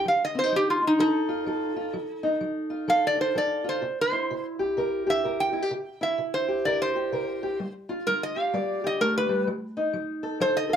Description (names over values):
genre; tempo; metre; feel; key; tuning
acoustic country blues, solo or duo; 127 BPM; 4/4; swing 61% on 8ths; unclear; A4 = 440 Hz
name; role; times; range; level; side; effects
metal-body resonator slide guitar; melody; 0.0-10.8 s; Eb4 to G5; -24 LUFS; right 1 dB; none
fingerpicked steel-string acoustic guitar; accompaniment; 0.0-10.8 s; C3 to D5; -28 LUFS; equal; none
room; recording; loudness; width
wet small room reverb, RT60 0.5 s; heard from further back in the room; -24 LUFS; side -8 dB against mid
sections
0.0-10.8 A section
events
none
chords
0.0 F7; 3.8 C7; 7.6 G5; 9.5 F7